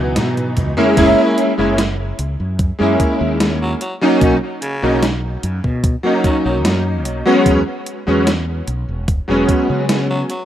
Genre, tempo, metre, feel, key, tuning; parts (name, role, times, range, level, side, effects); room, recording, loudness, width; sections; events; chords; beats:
vaporwave; 74 BPM; 4/4; straight; A4 = 440 Hz
bright electric grand piano; accompaniment; 0.0-10.3 s; E3 to E4; -15 LUFS; equal; ensemble chorus, tape echo
mellow fretless electric bass; bass; 0.0-10.2 s; E1 to C#3; -20 LUFS; equal; tube saturation, wide subtle chorus
gated 80s digital drum machine; drums; 0.2-10.4 s; crash cymbal, hi-hat, snare drum, toms; -21 LUFS; right 1 dB; gated reverb, gated reverb snare
electronic kick drum; drums; 0.6-9.7 s; -17 LUFS; equal
raspy tenor saxophone; melody; 3.6-10.4 s; C#3 to F#3; -28 LUFS; equal; tape echo
little or no reverb; rough home demo mix; -14 LUFS; side -11 dB against mid
1.0-10.4 A section
drum fill 0.0-1.0
0.0 C#m11; 1.0 F#9; 3.8 Bmaj9; 7.5 E69
0.16 | 0.97 1.78 2.60 3.40 | 4.22 5.03 5.84 6.65 | 7.46 8.27 9.08 9.89